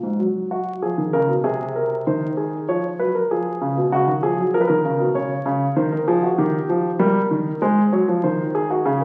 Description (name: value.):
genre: classical, baroque-style two-part invention for grand piano.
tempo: 97 BPM.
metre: 4/4.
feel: straight.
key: F# major.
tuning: A4 = 441 Hz.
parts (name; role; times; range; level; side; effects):
dark grand piano; solo; 0.0-9.0 s; G#2 to C#5; -21 LUFS; equal; none.
room: wet recital hall reverb, RT60 1.4 s.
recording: very old 78 rpm record, vinyl crackle.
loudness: -21 LUFS.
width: mono.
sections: 0.2-9.0 A section.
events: none.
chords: 0.2 F#; 1.4 G#/B#; 2.7 C#/E#; 3.9 F#/C#; 5.2 C#; 6.4 D#; 7.6 G#.